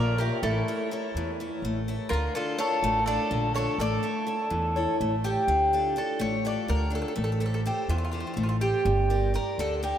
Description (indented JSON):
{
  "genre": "greek folk, Greek bouzouki band",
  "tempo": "249 BPM (eighths)",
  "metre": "7/8",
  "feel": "straight",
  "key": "D harmonic minor",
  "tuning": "A4 = 440 Hz",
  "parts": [
    { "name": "Greek bouzouki", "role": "melody", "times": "0.0-10.0 s", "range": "F4 to D5", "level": "-29 LUFS", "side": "right 1 dB", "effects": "none" },
    { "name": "mandolin", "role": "second line", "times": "0.0-5.0 s", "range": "E4 to Bb4", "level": "-31 LUFS", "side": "right 1 dB", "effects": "none" },
    { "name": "picked steel-string acoustic guitar", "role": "accompaniment", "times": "0.0-10.0 s", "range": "D3 to E5", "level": "-31 LUFS", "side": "left 2 dB", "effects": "none" },
    { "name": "upright bass", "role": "bass", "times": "0.0-9.9 s", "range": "G1 to E2", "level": "-29 LUFS", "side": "equal", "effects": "none" }
  ],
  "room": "wet cathedral reverb, RT60 6.6 s",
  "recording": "in a vast, echoing space",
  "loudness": "-24 LUFS",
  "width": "side -10 dB against mid",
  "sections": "0.0-5.5 A section; 5.5-10.0 B section",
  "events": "none",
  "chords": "0.4 A; 2.1 Dm; 3.8 A; 5.5 Dm; 7.2 Am7; 8.8 Gm"
}